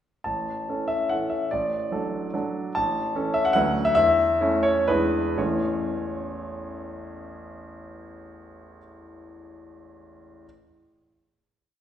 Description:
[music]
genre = classical, romantic triple-time dance for piano with dotted rhythms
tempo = 114-158 BPM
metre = 3/4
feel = rubato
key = A major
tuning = A4 = 440 Hz
[part]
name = warm concert grand piano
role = solo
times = 0.2-10.5 s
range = A1 to A5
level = -23 LUFS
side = equal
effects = none
[sound]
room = wet recital hall reverb, RT60 1.5 s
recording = heard from further back in the room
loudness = -22 LUFS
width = side -10 dB against mid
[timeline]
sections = 0.3-5.4 A section; 5.4-8.4 final chord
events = slowing down 2.1-5.4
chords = 0.3 A; 1.5 D/A; 2.8 A; 3.6 Bm/D; 4.0 A/E; 4.9 E7; 5.4 A

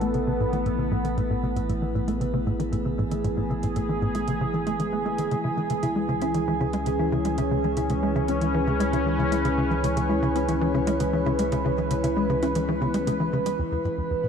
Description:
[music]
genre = ambient, sequencer-driven space music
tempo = 116 BPM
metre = 4/4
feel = straight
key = unclear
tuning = A4 = 440 Hz
[part]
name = sweeping resonant pad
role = sustained chords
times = 0.0-14.3 s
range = E3 to B4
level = -26 LUFS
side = equal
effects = chorus, shimmer reverb
[part]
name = thumb-piano-like synth pluck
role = arpeggios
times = 0.0-14.3 s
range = G#3 to B4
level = -32 LUFS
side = left 4 dB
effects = chorus, auto-pan, ping-pong delay, shimmer reverb
[part]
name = tight sequencer bass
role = riff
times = 0.0-14.3 s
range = E2 to C#4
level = -27 LUFS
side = equal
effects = wide subtle chorus, ping-pong delay, shimmer reverb
[part]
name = warm sub bass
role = bass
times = 0.0-14.3 s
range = E1 to C#2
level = -32 LUFS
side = equal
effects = none
[part]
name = electronic hi-hat and congas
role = percussion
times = 0.0-13.6 s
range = none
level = -41 LUFS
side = right 3 dB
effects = ping-pong delay
[sound]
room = wet lush hall reverb, RT60 2.8 s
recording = none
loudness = -22 LUFS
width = side -7 dB against mid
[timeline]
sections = 0.0-13.6 A section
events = fade-in on drum 0.0-13.6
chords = 0.0 Asus2; 5.3 C#m7; 13.6 E5

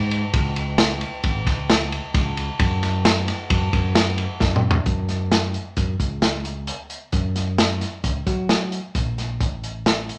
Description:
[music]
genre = progressive instrumental, band music in an uneven meter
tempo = 132 BPM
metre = 5/4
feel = straight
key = F# minor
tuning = A4 = 443 Hz
[part]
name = modern bright fingered electric bass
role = bass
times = 0.0-10.1 s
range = G#1 to F#3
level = -27 LUFS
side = equal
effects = none
[part]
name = crunchy breakbeat drum kit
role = drums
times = 0.1-10.2 s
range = hi-hat, kick drum, ride cymbal, snare drum, toms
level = -23 LUFS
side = equal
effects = none
[sound]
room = moderate large studio reverb, RT60 0.8 s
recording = none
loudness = -22 LUFS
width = mono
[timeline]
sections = 0.0-4.9 A section; 4.9-10.2 B section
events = drum fill 4.4-4.9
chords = none

